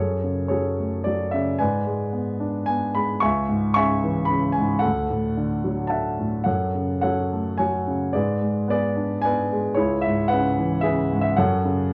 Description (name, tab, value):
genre	classical, lyrical solo piano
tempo	110 BPM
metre	3/4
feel	rubato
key	F# minor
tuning	A4 = 441 Hz
part	warm grand piano	solo	0.0-11.9 s	C#2 to C#6	-23 LUFS	equal	none
room	moderate studio reverb, RT60 0.5 s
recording	worn, warbling old tape, cassette tape, warbly pitch drift, nothing above 10.4 kHz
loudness	-23 LUFS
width	mono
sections	0.0-11.9 A section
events	none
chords	0.0 F#madd9; 1.6 G#dim; 3.2 C#m; 4.8 Dadd9; 6.5 F#madd9; 8.1 G#dim; 9.8 C#m7; 11.4 F#m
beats	0.50 1.06 | 1.60 2.14 2.68 | 3.22 3.76 4.30 | 4.83 5.37 5.92 | 6.48 7.04 7.59 | 8.14 8.69 9.23 | 9.77 10.30 10.84 | 11.37 11.92